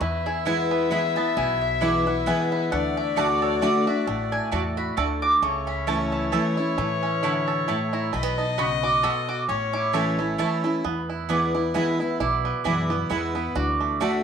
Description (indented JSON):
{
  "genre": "bluegrass",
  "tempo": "133 BPM",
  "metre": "3/4",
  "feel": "swing 55% on 8ths",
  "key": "unclear",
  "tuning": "A4 = 440 Hz",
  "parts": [
    { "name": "mandolin", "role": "melody", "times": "0.0-14.2 s", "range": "G#4 to D#6", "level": "-27 LUFS", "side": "right 2 dB", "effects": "none" },
    { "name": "warm fiddle", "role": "second line", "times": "0.0-10.6 s", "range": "C#5 to E5", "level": "-28 LUFS", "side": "left 12 dB", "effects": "none" },
    { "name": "picked steel-string acoustic guitar", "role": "accompaniment", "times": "0.0-14.2 s", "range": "E2 to F#4", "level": "-26 LUFS", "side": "left 1 dB", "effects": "none" },
    { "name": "bluegrass banjo", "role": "arpeggios", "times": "0.0-14.2 s", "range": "A3 to A4", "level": "-29 LUFS", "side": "right 9 dB", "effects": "none" },
    { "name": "upright bass", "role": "bass", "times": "0.0-14.2 s", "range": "A1 to A2", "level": "-33 LUFS", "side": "left 1 dB", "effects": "none" },
    { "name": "mandolin", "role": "stabs", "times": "0.5-14.1 s", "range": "A3 to B5", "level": "-30 LUFS", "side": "right 9 dB", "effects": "none" }
  ],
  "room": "wet spring reverb, RT60 1.1 s, studio reverb",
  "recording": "1960s-style stereo with parts hard left and right",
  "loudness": "-21 LUFS",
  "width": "side -7 dB against mid",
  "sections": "0.0-10.8 A section; 10.8-14.2 B section",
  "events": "mandolin solo 0.0-10.8",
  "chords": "0.0 E; 2.7 D; 5.4 A/C#; 8.1 B; 9.5 A; 10.8 E; 13.6 D"
}